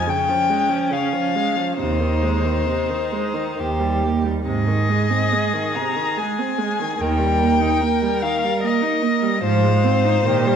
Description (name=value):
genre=classical, slow romantic movement for string quartet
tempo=67-76 BPM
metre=3/4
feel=rubato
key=Ab major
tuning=A4 = 442 Hz
part: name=rich violin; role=melody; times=0.0-10.6 s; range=C5 to Bb5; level=-22 LUFS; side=left 7 dB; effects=none
part: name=rich violin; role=second line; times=0.0-10.6 s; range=Db4 to Bb4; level=-26 LUFS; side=right 1 dB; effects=none
part: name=rich viola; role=accompaniment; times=0.0-10.6 s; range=C3 to Eb4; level=-24 LUFS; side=right 6 dB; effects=none
part: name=rich cello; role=bass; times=1.8-10.6 s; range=Eb2 to Bb2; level=-22 LUFS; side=right 3 dB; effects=none
room=moderate scoring stage reverb, RT60 1.5 s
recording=dark, warm production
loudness=-18 LUFS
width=side -7 dB against mid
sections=0.0-10.6 A section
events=none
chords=0.0 Db; 1.8 Ab/Eb; 3.6 Eb; 4.5 Ab; 7.0 Eb; 9.4 Fm7/Ab